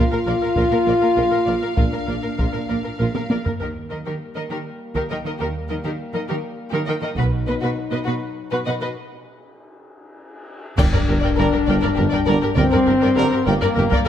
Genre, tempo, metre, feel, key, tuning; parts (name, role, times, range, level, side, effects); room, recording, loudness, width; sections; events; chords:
cinematic, epic orchestral film score; 67 BPM (dotted quarters); 6/8; straight; Eb major; A4 = 439 Hz
rich symphonic violin section; melody; 0.0-14.1 s; Bb4 to G5; -32 LUFS; left 2 dB
warm studio violin section; second line; 0.0-14.0 s; F4 to Eb5; -30 LUFS; left 5 dB
clear symphonic viola section; accompaniment; 0.0-14.1 s; Bb4 to B4; -28 LUFS; right 1 dB
mellow French horn section; sustained chords; 0.0-14.1 s; F#3 to F4; -22 LUFS; left 3 dB
clear symphonic double bass section; bass; 0.0-7.3, 10.8-13.8 s; G1 to Eb2; -27 LUFS; right 2 dB
mellow tuba; bass; 0.0-3.4, 10.8-13.8 s; G1 to Bb1; -28 LUFS; right 3 dB
rich symphonic cello section; bass; 0.0-14.0 s; G2 to Eb3; -27 LUFS; right 3 dB
taiko ensemble; drums; 0.6-14.1 s; -23 LUFS; equal
cymbal swell, clash cymbals and concert bass drum; percussion; 7.2-11.9 s; -28 LUFS; equal
clear trombone section; sustained chords; 11.4-14.1 s; D3 to G3; -28 LUFS; right 4 dB
clear trumpet; stabs; 11.4-13.3 s; Bb4; -28 LUFS; right 3 dB
moderate scoring stage reverb, RT60 1.9 s; -18 LUFS; side -10 dB against mid
0.0-3.6 A section; 3.6-10.8 B section; 10.8-14.1 C section
drum fill 3.2-3.6; break 9.0-10.8; band accent 10.8-11.4
0.0 Bb; 3.6 Eb; 7.2 B; 10.8 Gm